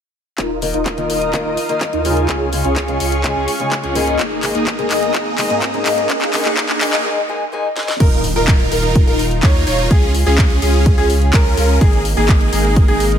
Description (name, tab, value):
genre	EDM, festival progressive house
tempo	126 BPM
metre	4/4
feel	straight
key	unclear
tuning	A4 = 438 Hz
part	lush unison pad	sustained chords	0.4-13.2 s	Db3 to Eb6	-26 LUFS	right 1 dB	chorus, sidechain pumping
part	supersaw chords	riff	0.4-13.0 s	Bb3 to Db5	-20 LUFS	right 1 dB	phaser, sidechain pumping, low-pass filter, tape echo
part	saturated sub bass	bass	0.4-13.2 s	Eb1 to Ab2	-19 LUFS	equal	sidechain pumping
part	electronic kick drum	drums	0.4-12.9 s	none	-14 LUFS	equal	overdrive, high-pass filter on kick, studio reverb
part	house drum kit	drums	0.4-13.2 s	crash cymbal, handclaps, hi-hat, snare drum	-22 LUFS	left 1 dB	overdrive, studio reverb
part	riser, swell and impact	sound effects	2.5-9.9 s	none	-30 LUFS	right 1 dB	none
part	fingerpicked acoustic archtop guitar	accompaniment	0.6-7.9 s	Ab2 to Bb4	-20 LUFS	left 4 dB	sidechain pumping, tape echo
part	clear baby grand piano	arpeggios	8.0-13.0 s	Ab4 to Db5	-22 LUFS	equal	sidechain pumping, tape echo
room	light reverb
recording	high-pass filter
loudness	-13 LUFS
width	side -9 dB against mid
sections	0.4-8.0 A section; 8.0-13.2 B section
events	build-up 0.4-8.0; drum fill 0.4-7.0, 7.8; filter sweep on supersaw synth 0.4-8.0; filter sweep 0.4-8.0; riser 2.5-7.0; break 7.0-8.0; swell 7.0-8.0; drop 8.0-13.2; impact 8.0-9.9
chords	0.4 Ebsus2; 2.3 Db; 4.2 Absus2; 6.1 Gbadd9; 8.0 Ebsus2; 9.9 Db; 11.8 Absus2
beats	| 0.38 0.86 1.33 1.81 | 2.29 2.76 3.24 3.72 | 4.19 4.67 5.14 5.62 | 6.10 6.57 7.05 7.53 | 8.00 8.48 8.95 9.43 | 9.91 10.38 10.86 11.34 | 11.81 12.29 12.76